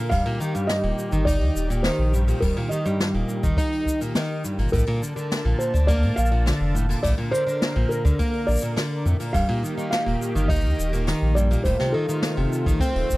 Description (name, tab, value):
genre	folktronica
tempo	104 BPM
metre	4/4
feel	straight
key	Bb major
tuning	A4 = 439 Hz
part	felt-muted upright piano	melody	0.0-13.0 s	A4 to F5	-28 LUFS	equal	tape echo
part	warm analog pad	sustained chords	0.0-13.2 s	D3 to A5	-32 LUFS	equal	chorus
part	fingerpicked plugged-in twelve-string acoustic guitar	arpeggios	0.0-13.2 s	G2 to Eb4	-26 LUFS	equal	tape echo
part	warm sub bass	bass	0.1-13.2 s	Eb1 to Bb2	-22 LUFS	equal	none
part	jazz brush drum kit	drums	0.1-13.2 s	hi-hat, shaker, snare drum	-31 LUFS	left 1 dB	none
part	kick drum	drums	0.1-13.2 s	none	-25 LUFS	equal	none
room	little or no reverb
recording	dry, close 1970s-style studio recording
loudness	-20 LUFS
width	side -19 dB against mid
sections	0.0-13.2 A section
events	none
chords	0.1 Eb; 4.7 Bbmaj7; 9.3 Eb; 11.7 F7